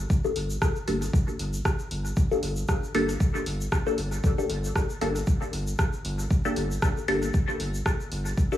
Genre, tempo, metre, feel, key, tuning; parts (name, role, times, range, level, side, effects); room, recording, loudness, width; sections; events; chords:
dub techno; 116 BPM; 4/4; swing 56% on 16ths; G minor; A4 = 440 Hz
filtered dub chord stab; stabs; 0.0-8.6 s; Bb3 to A4; -29 LUFS; left 2 dB; phaser, sidechain pumping, dub echo
round analog bass; bass; 0.0-8.3 s; G1; -30 LUFS; equal; sidechain pumping
electronic kick drum; drums; 0.1-8.5 s; -24 LUFS; equal
egg shaker; percussion; 0.1-8.6 s; -42 LUFS; left 1 dB
punchy analog drum machine; drums; 0.4-8.2 s; hi-hat, rim click; -33 LUFS; right 1 dB; dub echo
light reverb; vinyl crackle, small room reverb; -24 LUFS; side -12 dB against mid
0.0-8.6 A section
filter sweep on synth stab 0.0-8.6
0.0 Gmadd9